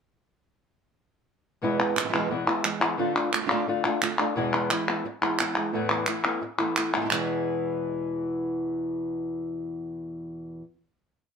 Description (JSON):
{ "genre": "flamenco", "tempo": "176 BPM", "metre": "4/4", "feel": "straight", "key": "E major", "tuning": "A4 = 441 Hz", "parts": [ { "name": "nylon-string guitar", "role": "accompaniment", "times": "1.6-10.7 s", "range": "E2 to F4", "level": "-29 LUFS", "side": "left 4 dB", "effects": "none" }, { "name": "flamenco guitar", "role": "stabs", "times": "1.6-10.6 s", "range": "E2 to F4", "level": "-32 LUFS", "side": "right 8 dB", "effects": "none" }, { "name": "palmas hand claps", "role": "percussion", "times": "1.8-7.2 s", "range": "none", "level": "-26 LUFS", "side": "equal", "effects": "none" } ], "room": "moderate studio ambience, RT60 0.5 s", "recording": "none", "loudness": "-25 LUFS", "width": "side -6 dB against mid", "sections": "1.6-7.1 groove; 7.1-9.8 final chord", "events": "none", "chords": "1.6 E; 3.0 Dm; 4.4 E; 5.7 Esus4; 7.1 E" }